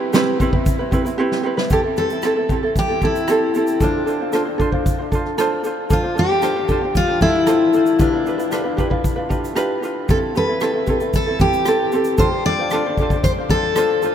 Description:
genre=acoustic pop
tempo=114 BPM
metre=4/4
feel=straight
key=unclear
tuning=A4 = 440 Hz
part: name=ukulele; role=accompaniment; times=0.0-14.1 s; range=C4 to C5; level=-20 LUFS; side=right 1 dB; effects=none
part: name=natural country drum kit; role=drums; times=0.1-14.1 s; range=kick drum, rim click, shaker, snare drum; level=-22 LUFS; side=equal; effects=none
part: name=picked steel-string acoustic guitar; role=melody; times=1.7-14.1 s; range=D4 to D5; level=-19 LUFS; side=left 2 dB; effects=none
room=moderate cathedral reverb, RT60 7.3 s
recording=in a vast, echoing space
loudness=-16 LUFS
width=side -9 dB against mid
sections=0.0-1.7 A section; 1.7-14.1 B section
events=drum fill 1.2-1.7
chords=0.0 Cmaj7; 1.7 Am7/C; 3.8 Dm7; 8.0 G7; 10.1 Am7/C; 12.2 Dm7

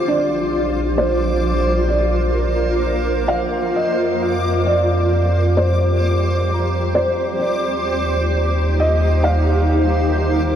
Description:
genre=ambient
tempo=65 BPM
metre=4/4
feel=straight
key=unclear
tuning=A4 = 444 Hz
part: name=granular cloud pad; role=sustained chords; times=0.0-10.6 s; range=Eb4 to F5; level=-21 LUFS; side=equal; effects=built-in reverb
part: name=muted felt-like synth keys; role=arpeggios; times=0.0-10.6 s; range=D4 to Bb5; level=-30 LUFS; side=equal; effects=chorus, tape echo
part: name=round analog bass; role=bass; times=0.0-10.6 s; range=Bb1 to F2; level=-19 LUFS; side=equal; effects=none
part: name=backwards swelling texture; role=texture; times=0.0-10.6 s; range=C5 to D6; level=-25 LUFS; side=right 2 dB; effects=built-in reverb
part: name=felt-muted upright piano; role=melody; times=0.1-10.6 s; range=C5 to F5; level=-22 LUFS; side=equal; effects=tape echo
room=wet huge ambient reverb, RT60 7.5 s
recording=worn, warbling old tape, cassette tape, warbly pitch drift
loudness=-15 LUFS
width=side -9 dB against mid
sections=0.0-10.6 A section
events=fade-out on synth keys 0.0-10.6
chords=0.1 Bb; 3.8 Fsus2; 7.5 Eb

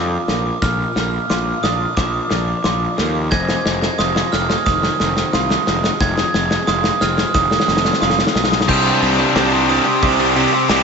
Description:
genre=post-rock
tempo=89 BPM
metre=4/4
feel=straight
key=unclear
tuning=A4 = 441 Hz
part: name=pedal steel guitar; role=sustained chords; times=0.0-10.8 s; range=D4 to C6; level=-30 LUFS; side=left 2 dB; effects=none
part: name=clean electric guitar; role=arpeggios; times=0.0-10.8 s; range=F2 to F4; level=-25 LUFS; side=left 2 dB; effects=analog chorus, ping-pong delay
part: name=glockenspiel with brass mallets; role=arpeggios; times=0.0-10.8 s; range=D6 to Ab6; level=-20 LUFS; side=right 5 dB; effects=ping-pong delay
part: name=fuzz fingered electric bass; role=bass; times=0.0-10.8 s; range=F1 to F2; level=-23 LUFS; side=equal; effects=overdrive
part: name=loose indie drum kit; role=drums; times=0.3-10.8 s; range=crash cymbal, hi-hat, kick drum, snare drum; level=-20 LUFS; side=left 2 dB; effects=none
part: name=crunchy overdriven guitar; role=riff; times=8.7-10.8 s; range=C3 to D4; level=-18 LUFS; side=right 9 dB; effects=analog chorus
part: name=distorted electric guitar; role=riff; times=8.7-10.8 s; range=C3 to D4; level=-18 LUFS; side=left 10 dB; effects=overdrive
room=wet huge ambient reverb, RT60 8.1 s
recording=dreamy mix soaked in reverb, nothing above 7.9 kHz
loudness=-14 LUFS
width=side -5 dB against mid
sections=0.0-8.7 A section; 8.7-10.8 B section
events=build-up 0.0-8.7; drum fill 0.0-8.7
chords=0.0 Bb; 3.3 Fm7; 8.7 Csus2

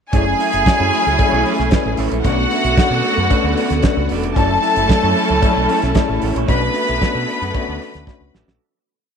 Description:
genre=disco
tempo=113 BPM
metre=4/4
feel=straight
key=F# minor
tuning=A4 = 440 Hz
part: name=clear studio string section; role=second line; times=0.1-8.3 s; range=F#4 to B5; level=-19 LUFS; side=left 1 dB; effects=none
part: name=electric guitar at the edge of break-up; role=accompaniment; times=0.1-8.6 s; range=B3 to E5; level=-25 LUFS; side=right 13 dB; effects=spring reverb
part: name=mellow tine electric piano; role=accompaniment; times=0.1-8.6 s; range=G#3 to F#5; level=-23 LUFS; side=left 12 dB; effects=medium stereo tremolo
part: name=warm studio string section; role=sustained chords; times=0.1-8.6 s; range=D3 to E4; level=-23 LUFS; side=right 1 dB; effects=none
part: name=deep dub fingered electric bass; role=bass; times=0.1-8.6 s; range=E1 to B2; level=-22 LUFS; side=right 1 dB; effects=none
part: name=damped 70s drum kit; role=drums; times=0.1-8.6 s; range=hi-hat, kick drum, snare drum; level=-19 LUFS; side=right 2 dB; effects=none
part: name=cowbell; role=percussion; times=0.1-8.2 s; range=none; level=-30 LUFS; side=left 14 dB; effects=none
room=light reverb, small room ambience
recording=1960s-style stereo with parts hard left and right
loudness=-14 LUFS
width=side -7 dB against mid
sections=0.1-8.6 groove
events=tine electric piano fill 3.3-4.4, 7.0-8.6; fade-out 6.5-8.6; drum fill 8.1-8.6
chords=0.1 F#m7; 2.2 Bm7; 4.4 F#m7; 6.5 Bm7

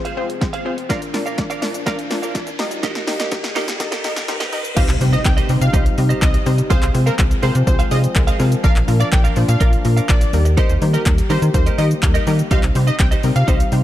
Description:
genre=dance-pop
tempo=124 BPM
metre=4/4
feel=straight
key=C minor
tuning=A4 = 436 Hz
part: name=wide unison pluck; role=accompaniment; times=0.0-13.8 s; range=F3 to F5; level=-24 LUFS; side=left 3 dB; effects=sidechain pumping
part: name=mellow French horn section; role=sustained chords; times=0.0-13.8 s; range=Eb2 to G4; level=-30 LUFS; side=left 2 dB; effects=sidechain pumping
part: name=direct-recorded clean electric guitar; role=riff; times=0.0-13.8 s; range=Eb4 to F5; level=-27 LUFS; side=right 6 dB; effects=ensemble chorus
part: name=riser and impact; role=sound effects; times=0.1-6.7 s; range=none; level=-29 LUFS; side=equal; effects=none
part: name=punchy analog drum machine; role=drums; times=0.1-13.8 s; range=crash cymbal, handclaps, hi-hat, kick drum, shaker, snare drum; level=-18 LUFS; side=equal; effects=overdrive
part: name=plucky unison lead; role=melody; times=4.8-13.7 s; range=Bb4 to G5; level=-25 LUFS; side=left 1 dB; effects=sidechain pumping, digital delay
part: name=slap-like FM bass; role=bass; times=4.8-13.8 s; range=Bb1 to Eb3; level=-17 LUFS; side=equal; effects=sidechain pumping
room=little or no reverb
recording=dark, warm production, high-pass filter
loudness=-15 LUFS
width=side -13 dB against mid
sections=0.0-4.8 A section; 4.8-13.8 B section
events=build-up 0.0-4.8; drum fill 0.0-4.8; riser 0.1-4.8; filter sweep 0.0-4.8; drop 4.8-13.8; impact 4.8-6.7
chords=0.0 Fm/C; 0.9 Bb; 2.6 Eb; 4.8 Cm; 6.7 Fm/C; 8.6 Bb; 10.3 Eb; 12.5 Cm

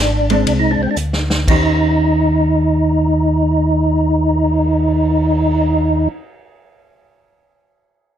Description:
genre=soul jazz organ trio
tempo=115 BPM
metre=4/4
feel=swing 65% on 8ths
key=Eb mixolydian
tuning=A4 = 442 Hz
part: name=percussive tonewheel organ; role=melody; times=0.0-6.1 s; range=C4 to Eb4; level=-16 LUFS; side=right 1 dB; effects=slow rotary speaker, overdrive, chorus vibrato
part: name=mellow tonewheel organ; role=bass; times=0.0-6.1 s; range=Ab1 to Eb2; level=-17 LUFS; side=equal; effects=slow rotary speaker
part: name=vintage hollow-body jazz guitar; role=accompaniment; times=0.3-6.2 s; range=Eb3 to C5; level=-22 LUFS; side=right 1 dB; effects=none
part: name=vintage drum kit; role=drums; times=0.3-5.5 s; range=crash cymbal, cymbal swell, hi-hat, kick drum, ride cymbal, snare drum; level=-22 LUFS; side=equal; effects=none
room=light reverb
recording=close, detailed microphones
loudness=-13 LUFS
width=side -10 dB against mid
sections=0.0-1.5 A section; 1.5-5.7 B section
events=slowing down 0.0-1.5; drum fill 1.0-1.5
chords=0.0 Bb9 (rootless); 1.5 Eb6

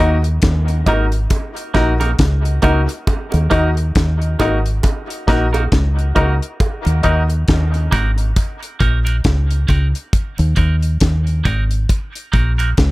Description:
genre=dub reggae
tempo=68 BPM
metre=4/4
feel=swing 58% on 16ths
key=Eb minor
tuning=A4 = 442 Hz
part: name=semi-hollow electric guitar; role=accompaniment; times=0.0-12.7 s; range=Bb3 to Bb4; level=-23 LUFS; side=right 4 dB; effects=high-pass filter, dub echo
part: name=warm upright piano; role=stabs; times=0.0-7.2 s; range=Eb4 to Eb5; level=-22 LUFS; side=left 3 dB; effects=high-pass filter, dub echo
part: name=deep dub fingered electric bass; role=bass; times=0.0-12.9 s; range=Ab1 to Eb2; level=-16 LUFS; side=equal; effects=none
part: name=deep reggae drum kit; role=drums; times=0.2-12.9 s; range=hi-hat, kick drum, snare drum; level=-17 LUFS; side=equal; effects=none
part: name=bongos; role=percussion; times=0.9-12.8 s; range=none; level=-29 LUFS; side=right 5 dB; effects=high-pass filter on perc, dub echo
room=studio reverb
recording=none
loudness=-14 LUFS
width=side -19 dB against mid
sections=0.0-12.9 A section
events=filter sweep 3.1-12.9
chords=0.0 Ebm

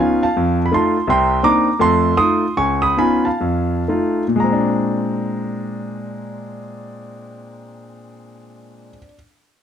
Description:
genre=solo jazz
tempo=112-168 BPM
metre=4/4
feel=swing 64% on 8ths, rubato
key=Bb mixolydian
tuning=A4 = 440 Hz
part: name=clear concert grand piano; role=solo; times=0.0-9.1 s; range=C2 to Eb6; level=-16 LUFS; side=equal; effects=none
room=light reverb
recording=dark, warm production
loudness=-15 LUFS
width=side -8 dB against mid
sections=0.0-4.4 A section; 4.4-8.6 B section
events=slowing down 1.1-4.4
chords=0.4 F7; 1.1 Cm9; 1.8 F7; 2.6 Db9; 3.4 F7; 4.4 Bb9

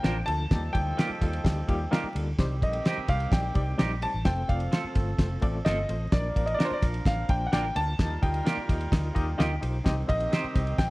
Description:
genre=uptempo 1960s-style soul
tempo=128 BPM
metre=4/4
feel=straight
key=Bb major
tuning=A4 = 441 Hz
part: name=warm baby grand piano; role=melody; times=0.0-10.9 s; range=C5 to A5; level=-32 LUFS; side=equal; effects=none
part: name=warm horn section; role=second line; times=0.0-10.9 s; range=Eb3 to Bb4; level=-39 LUFS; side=right 2 dB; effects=none
part: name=barky reed electric piano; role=accompaniment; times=0.0-10.9 s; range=F3 to Bb5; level=-36 LUFS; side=left 2 dB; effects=overdrive, fast tremolo
part: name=clean electric guitar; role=stabs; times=0.0-10.4 s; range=Bb3 to C5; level=-35 LUFS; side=right 4 dB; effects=spring reverb
part: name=vintage muted fingered electric bass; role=bass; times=0.0-10.9 s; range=F1 to Eb2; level=-30 LUFS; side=equal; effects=none
part: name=cloth-damped thuddy drum kit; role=drums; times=0.0-10.9 s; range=kick drum, ride cymbal, snare drum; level=-27 LUFS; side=equal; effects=none
room=light reverb, studio ambience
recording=vinyl crackle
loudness=-24 LUFS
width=side -21 dB against mid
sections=0.0-10.9 A section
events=reed electric piano fill 8.9-9.9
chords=0.0 Bb; 0.5 Ebadd9; 2.4 Cm; 4.3 F; 6.1 Bb; 8.0 Ebadd9; 9.9 Cm

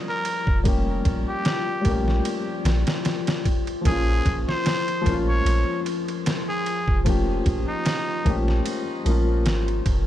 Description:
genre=trip hop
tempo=75 BPM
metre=4/4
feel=swing 55% on 16ths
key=Bb dorian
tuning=A4 = 439 Hz
part: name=dark upright piano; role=accompaniment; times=0.0-10.1 s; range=F3 to G4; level=-28 LUFS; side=left 2 dB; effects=harmonic tremolo, tape echo
part: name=warbly tape-like pad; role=sustained chords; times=0.0-10.1 s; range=F3 to F4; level=-30 LUFS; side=left 4 dB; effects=chorus, built-in reverb
part: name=trumpet with straight mute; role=melody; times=0.1-8.4 s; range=Eb4 to Db5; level=-29 LUFS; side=equal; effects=tape echo
part: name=trip hop sampler-style drum kit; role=drums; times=0.2-10.1 s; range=kick drum, ride cymbal, snare drum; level=-26 LUFS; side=equal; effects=overdrive
part: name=soft 808-style bass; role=bass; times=0.5-10.1 s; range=F1 to Bb1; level=-23 LUFS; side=equal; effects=none
room=digital ambience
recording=dark, warm production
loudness=-20 LUFS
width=side -12 dB against mid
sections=0.0-10.1 A section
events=none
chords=0.0 Eb9/F (rootless); 3.9 Bbm

